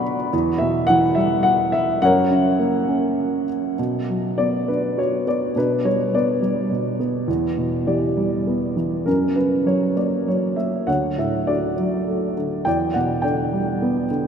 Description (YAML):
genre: classical, lyrical solo piano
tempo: 98-108 BPM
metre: 3/4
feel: rubato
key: B minor from 3.8 s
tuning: A4 = 440 Hz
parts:
  - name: dark baby grand piano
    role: solo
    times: 0.0-14.3 s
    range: D2 to C#6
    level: -18 LUFS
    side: equal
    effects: none
room: wet cathedral reverb, RT60 6.4 s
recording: in a vast, echoing space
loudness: -18 LUFS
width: side -7 dB against mid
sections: 0.0-3.8 A section; 3.8-14.3 B section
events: none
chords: 0.3 Em; 2.0 F#; 3.8 Bm; 5.6 G/B; 7.3 Em; 9.1 F#; 10.9 Dmaj7; 12.7 Em7